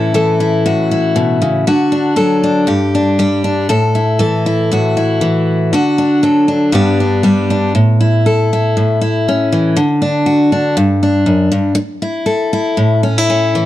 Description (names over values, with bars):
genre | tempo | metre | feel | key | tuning
highlife | 119 BPM | 4/4 | swing 55% on 16ths | A mixolydian | A4 = 440 Hz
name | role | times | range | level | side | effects
picked steel-string acoustic guitar | solo | 0.0-13.7 s | F#2 to A4 | -11 LUFS | left 1 dB | none
room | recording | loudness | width
light reverb, studio reverb | dry, close 1970s-style studio recording | -11 LUFS | side -14 dB against mid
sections
0.0-7.7 A section; 7.7-13.7 B section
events
none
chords
0.0 A; 1.7 D; 2.7 G5; 3.7 A5; 5.7 D; 6.7 G; 7.7 A; 9.8 D; 10.8 G5; 11.8 A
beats
0.16 0.67 1.17 | 1.68 2.18 2.69 3.20 | 3.70 4.21 4.71 5.22 | 5.72 6.23 6.74 7.24 | 7.75 8.25 8.76 9.26 | 9.77 10.28 10.78 11.29 | 11.79 12.30 12.80 13.31